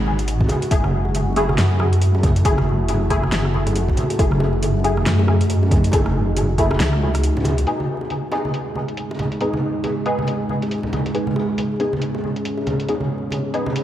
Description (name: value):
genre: deep dubstep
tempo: 138 BPM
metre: 4/4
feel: swing 59% on 16ths, half-time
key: unclear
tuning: A4 = 440 Hz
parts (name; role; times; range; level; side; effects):
- deep dark ambient pad; sustained chords; 0.0-13.8 s; G#3 to G#4; -26 LUFS; right 1 dB; chorus, built-in reverb
- deep soft wobble bass; bass; 0.0-7.7 s; F#1 to F#2; -19 LUFS; equal; chorus
- congas and bongos; percussion; 0.1-13.7 s; none; -24 LUFS; right 1 dB; dub echo
- deep house drum kit; drums; 0.2-13.8 s; hi-hat, rim click, snare drum; -28 LUFS; equal; low-pass filter on hats, low-pass filter on snare
- electronic kick drum; drums; 0.4-6.7 s; none; -19 LUFS; equal; none
- filtered dub chord stab; stabs; 0.7-13.6 s; A3 to G#4; -25 LUFS; left 1 dB; ensemble chorus, dub echo
room: moderate lush hall reverb, RT60 2.0 s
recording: dreamy mix soaked in reverb, vinyl crackle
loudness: -17 LUFS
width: side -12 dB against mid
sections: 0.0-7.7 A section; 7.7-13.8 B section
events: kick drops out 7.2-7.7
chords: 0.0 G#5; 0.7 F#m7; 7.7 G#m